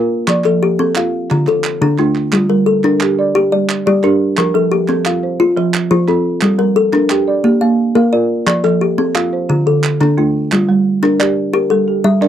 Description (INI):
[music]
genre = southern african traditional, mbira-style interlocking cycle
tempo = 117 BPM (dotted quarters)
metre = 12/8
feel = straight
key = G minor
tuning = A4 = 441 Hz
[part]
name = folk marimba with medium mallets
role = arpeggios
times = 0.0-12.3 s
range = D3 to F5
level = -16 LUFS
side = right 6 dB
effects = none
[part]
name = kalimba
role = arpeggios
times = 0.0-12.3 s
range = D3 to G5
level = -14 LUFS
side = left 3 dB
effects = none
[part]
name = group handclap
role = percussion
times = 0.3-12.3 s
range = none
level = -21 LUFS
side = right 6 dB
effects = none
[sound]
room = light reverb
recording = dry, close 1970s-style studio recording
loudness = -12 LUFS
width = side -10 dB against mid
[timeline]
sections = 0.0-10.5 A section; 10.5-12.3 B section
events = none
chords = 0.3 F; 1.3 Dm; 2.3 Gm; 4.4 F; 6.4 Gm; 7.4 Bb; 8.5 F; 9.5 Dm; 10.5 Gm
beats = | 0.28 0.79 1.31 1.82 | 2.33 2.84 3.35 3.87 | 4.38 4.89 5.40 5.91 | 6.42 6.93 7.45 7.96 | 8.47 8.98 9.49 10.00 | 10.51 11.03 11.54 12.05